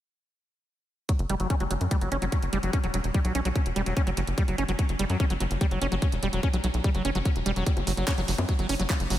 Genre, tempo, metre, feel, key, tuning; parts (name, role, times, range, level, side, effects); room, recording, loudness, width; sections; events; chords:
psychedelic trance; 146 BPM; 4/4; straight; A4 = 440 Hz
liquid acid bass; riff; 1.1-9.2 s; F#3 to C#4; -29 LUFS; equal; chorus, auto-pan, sidechain pumping, ping-pong delay
electronic kick drum; drums; 1.1-9.0 s; -25 LUFS; equal; overdrive, studio reverb
garage drum kit; drums; 1.1-9.2 s; bongos, handclaps, hi-hat; -34 LUFS; equal; overdrive, studio reverb
tight sequencer bass; bass; 1.2-9.2 s; E1 to F#2; -28 LUFS; equal
light reverb, digital ambience; -24 LUFS; side -13 dB against mid
1.1-9.2 A section
1.1 F#5